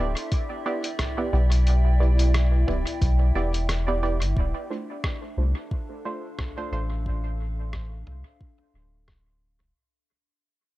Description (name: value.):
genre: ambient dub.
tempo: 89 BPM.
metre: 4/4.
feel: swing 56% on 16ths.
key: D dorian.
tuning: A4 = 439 Hz.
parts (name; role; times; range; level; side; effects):
warbly tape-like pad; sustained chords; 0.0-9.8 s; D4 to G5; -35 LUFS; equal; chorus, built-in reverb.
filtered dub chord stab; stabs; 0.0-6.9 s; A3 to D5; -31 LUFS; right 3 dB; chorus, dub echo.
warm sub bass; bass; 0.0-9.7 s; D1 to C2; -22 LUFS; equal; none.
lo-fi sampler-style drum kit; drums; 0.2-9.7 s; hi-hat, rim click, toms; -33 LUFS; equal; dub echo.
electronic kick drum; drums; 0.3-9.2 s; none; -28 LUFS; equal; none.
room: digital ambience.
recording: echo-heavy mix.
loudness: -22 LUFS.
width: side -17 dB against mid.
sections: 0.0-4.4 A section; 4.4-9.8 B section.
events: fade-out 4.4-9.8.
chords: 0.0 Em7; 4.4 Dm7.